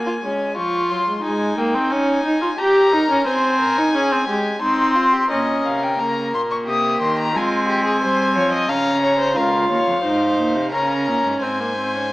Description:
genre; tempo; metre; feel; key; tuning
classical, baroque-style fugue for string quartet; 89 BPM; 3/4; straight; unclear; A4 = 442 Hz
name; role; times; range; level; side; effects
warm violin; melody; 0.0-12.1 s; Eb5 to Eb6; -23 LUFS; left 2 dB; none
warm viola; accompaniment; 0.0-12.1 s; F3 to G4; -20 LUFS; right 1 dB; none
rich violin; second line; 0.1-12.1 s; Db4 to F5; -23 LUFS; left 1 dB; none
rich cello; bass; 5.3-12.1 s; Db2 to Ab3; -26 LUFS; right 1 dB; none
room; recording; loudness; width
moderate recital hall reverb, RT60 1.6 s; small speaker sound; -16 LUFS; side -18 dB against mid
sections
0.0-5.3 A section; 5.3-12.1 B section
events
none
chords
0.0 Db5; 0.6 Db/F; 1.2 Ab; 2.6 Eb/G; 3.3 Ab/C; 4.6 Cmadd11; 5.3 Gdim/Bb (rootless); 6.7 Cm; 7.4 Fm/Ab; 8.7 Bbm/Db; 10.0 Ab; 10.7 Absus24; 11.4 Ab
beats
0.57 | 1.24 1.91 2.58 | 3.26 3.94 4.62 | 5.31 6.00 6.67 | 7.35 8.02 8.69 | 9.36 10.03 10.72 | 11.42

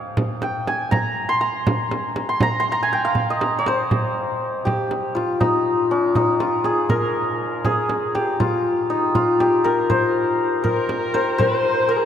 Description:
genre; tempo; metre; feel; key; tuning
Persian modal ensemble; 80 BPM (dotted quarters); 6/8; straight; C dastgah shur; A4 = 440 Hz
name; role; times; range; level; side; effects
santur; melody; 0.0-12.1 s; Db4+45c to C6; -19 LUFS; left 1 dB; none
frame drum; percussion; 0.2-11.5 s; none; -25 LUFS; right 2 dB; none
warm kamancheh; second line; 10.6-12.1 s; Ab4 to C5; -24 LUFS; equal; none
room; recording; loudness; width
wet cathedral reverb, RT60 5.4 s; in a vast, echoing space; -18 LUFS; side -9 dB against mid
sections
0.0-4.7 A section; 4.7-12.1 B section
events
none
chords
none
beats
| 0.17 0.92 | 1.67 2.41 | 3.16 3.91 | 4.66 5.41 | 6.15 6.90 | 7.65 8.40 | 9.15 9.90 | 10.65 11.40

